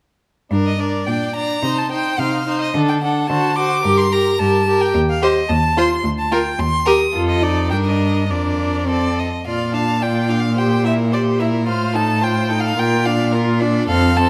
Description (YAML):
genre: quick classical-period movement for string quartet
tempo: 108 BPM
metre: 2/4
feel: rubato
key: G minor, Bb major from 4.9 s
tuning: A4 = 440 Hz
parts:
  - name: clear violin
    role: second line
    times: 0.5-14.3 s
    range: A4 to F5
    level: -27 LUFS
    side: equal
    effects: none
  - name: rich viola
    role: accompaniment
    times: 0.5-14.3 s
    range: C4 to G4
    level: -23 LUFS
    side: equal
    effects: none
  - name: clear cello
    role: bass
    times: 0.5-14.3 s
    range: D2 to D3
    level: -22 LUFS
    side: equal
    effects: none
  - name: clear violin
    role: melody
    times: 0.7-14.3 s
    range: D5 to Eb6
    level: -24 LUFS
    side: equal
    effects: none
room: moderate recital hall reverb, RT60 1.5 s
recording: none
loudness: -18 LUFS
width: mono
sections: 0.5-9.5 A section; 9.5-14.3 B section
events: none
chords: 0.5 Gm; 1.1 Gm/Bb; 1.6 Cm; 2.7 D; 3.3 D7; 3.8 Gm; 4.9 Cm/Eb; 5.5 F7/Eb; 6.0 Bb/D; 6.6 Cm7/Eb; 7.1 F7; 7.7 Gm; 8.3 Bb/F; 8.9 F; 9.5 Bb; 10.6 C7/Bb; 11.7 F7/A; 12.8 Bb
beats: | 0.51 1.07 | 1.63 2.19 | 2.75 3.30 | 3.85 4.39 | 4.94 5.49 | 6.04 6.59 | 7.15 7.72 | 8.30 8.88 | 9.46 10.02 | 10.57 11.12 | 11.67 12.23 | 12.78 13.34 | 13.89